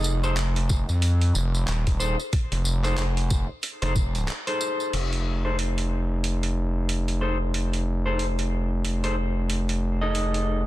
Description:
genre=glitch hop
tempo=92 BPM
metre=4/4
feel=swing 59% on 16ths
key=unclear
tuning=A4 = 440 Hz
part: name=clean electric guitar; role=stabs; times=0.0-10.6 s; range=Eb4 to Eb5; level=-31 LUFS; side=left 1 dB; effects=sidechain pumping, low-pass filter, dub echo
part: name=gritty driven synth bass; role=bass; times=0.0-10.7 s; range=Eb1 to F2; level=-24 LUFS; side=equal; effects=distortion, tube saturation
part: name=boom bap sampler-style drum kit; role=drums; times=0.0-10.5 s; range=crash cymbal, handclaps, hi-hat, tambourine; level=-32 LUFS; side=right 1 dB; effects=small room ambience
part: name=electronic kick drum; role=drums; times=0.7-4.1 s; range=none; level=-24 LUFS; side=equal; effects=small room ambience
room=little or no reverb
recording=dense, heavily limited modern master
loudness=-23 LUFS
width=side -16 dB against mid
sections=0.0-4.9 A section; 4.9-10.7 B section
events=filter sweep on clean electric guitar 4.9-10.7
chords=0.0 F7#9

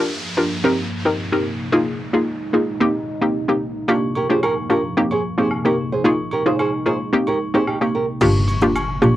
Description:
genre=afrobeats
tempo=111 BPM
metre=4/4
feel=straight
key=C minor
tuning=A4 = 440 Hz
part: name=hollow square pluck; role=accompaniment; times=0.0-9.2 s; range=Bb3 to Bb4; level=-18 LUFS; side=equal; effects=chorus
part: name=deep dark ambient pad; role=sustained chords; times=0.0-8.2 s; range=Bb3 to Eb4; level=-27 LUFS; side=right 1 dB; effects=chorus, built-in reverb
part: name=downlifter and impact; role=sound effects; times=0.0-3.9, 8.2-9.2 s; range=none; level=-30 LUFS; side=equal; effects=none
part: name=agogo bells and woodblock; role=percussion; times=3.9-9.2 s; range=none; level=-28 LUFS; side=left 2 dB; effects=none
part: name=nylon-string guitar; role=riff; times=4.2-8.0 s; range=Eb4 to C5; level=-22 LUFS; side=right 4 dB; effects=none
part: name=dark double bass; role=bass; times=8.2-9.2 s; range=G1 to Bb1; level=-18 LUFS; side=equal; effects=none
part: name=afro-pop drum kit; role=drums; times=8.2-9.2 s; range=crash cymbal, rim click, shaker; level=-27 LUFS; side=equal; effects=cassette tape
room=moderate booth ambience, RT60 0.3 s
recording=home recording on cassette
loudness=-17 LUFS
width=side -14 dB against mid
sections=0.0-8.2 A section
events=kick muted 8.2-9.2; impact 8.2-9.2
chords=0.0 Gm7; 0.6 Cm7; 1.7 Bb7sus4; 2.8 Cm7; 3.9 Gm7; 5.0 Cm7; 6.0 Bb7sus4; 7.1 Cm7; 8.2 Gm7

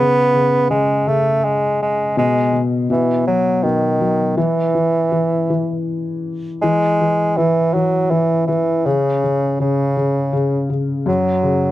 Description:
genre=children's music, lullaby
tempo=81 BPM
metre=3/4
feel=rubato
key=unclear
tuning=A4 = 440 Hz
part: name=warm bassoon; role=melody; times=0.0-11.7 s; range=C#3 to B3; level=-17 LUFS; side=right 1 dB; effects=none
part: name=felt-muted upright piano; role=accompaniment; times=0.0-11.7 s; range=F#2 to F#3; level=-19 LUFS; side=left 2 dB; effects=none
room=small room reverb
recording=dry, close 1970s-style studio recording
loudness=-15 LUFS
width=side -15 dB against mid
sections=0.0-6.6 A section; 6.6-11.7 A section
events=none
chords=0.0 N.C.; 2.9 B; 4.4 N.C.; 11.1 F#5

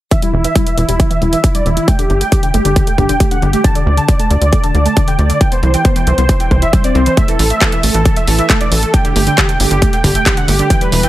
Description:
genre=uplifting trance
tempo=136 BPM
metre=4/4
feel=straight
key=unclear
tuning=A4 = 440 Hz
part: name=dense compressed supersaw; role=melody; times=0.1-11.1 s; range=E4 to A5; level=-17 LUFS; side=right 1 dB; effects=sidechain pumping, low-pass filter, tape echo
part: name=analog pluck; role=arpeggios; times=0.1-11.1 s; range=D3 to E4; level=-19 LUFS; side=right 1 dB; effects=chorus, sidechain pumping, tape echo
part: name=big-room dance drum kit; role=drums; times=0.1-11.1 s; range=handclaps, hi-hat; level=-19 LUFS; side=equal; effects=overdrive
part: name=electronic kick drum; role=drums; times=0.1-10.8 s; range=none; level=-13 LUFS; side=equal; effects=overdrive
part: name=tight sequencer bass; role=bass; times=0.3-11.1 s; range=E1 to D2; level=-14 LUFS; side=equal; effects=sidechain pumping
room=digital ambience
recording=none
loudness=-10 LUFS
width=side -15 dB against mid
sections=0.1-11.1 A section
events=filter sweep on synth pluck 0.1-11.1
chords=0.1 Em; 1.9 Gsus2; 3.6 D5; 5.4 Cmaj7; 7.2 A5; 8.9 Gsus2

